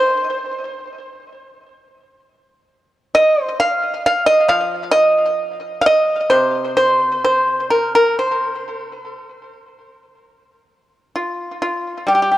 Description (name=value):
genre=chinese traditional, Chinese solo plucked strings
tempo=60-67 BPM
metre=4/4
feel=rubato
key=C yu mode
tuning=A4 = 439 Hz
part: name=pipa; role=solo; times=0.0-12.4 s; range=C3 to F5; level=-15 LUFS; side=equal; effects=tape echo
room=moderate plate reverb, RT60 2.9 s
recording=echo-heavy mix, cassette tape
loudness=-14 LUFS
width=side -14 dB against mid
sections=0.0-10.1 A section; 10.1-12.4 A section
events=none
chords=none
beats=0.87 1.78 | 2.69 3.59 4.50 5.41 | 6.32 7.25 8.19 9.16 | 10.15 11.12 12.07